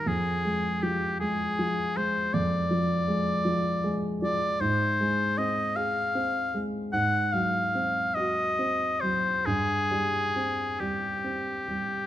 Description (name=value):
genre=classical, romantic duo for oboe and grand piano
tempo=44-54 BPM (dotted quarters)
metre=12/8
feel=rubato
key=C minor from 4.6 s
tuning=A4 = 441 Hz
part: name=clear oboe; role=melody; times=0.0-12.1 s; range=G4 to Gb5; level=-27 LUFS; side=left 2 dB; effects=none
part: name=dark grand piano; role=accompaniment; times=0.0-12.1 s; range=F2 to Ab4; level=-29 LUFS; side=right 1 dB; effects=none
room=light reverb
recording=close, detailed microphones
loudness=-25 LUFS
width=side -12 dB against mid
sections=0.0-12.1 A section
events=none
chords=0.1 Ddim/F; 4.6 Fm/Ab; 6.9 Ab7; 9.5 C5/G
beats=| 0.07 1.21 2.35 3.46 | 4.61 5.76 6.93 8.15 | 9.46 10.80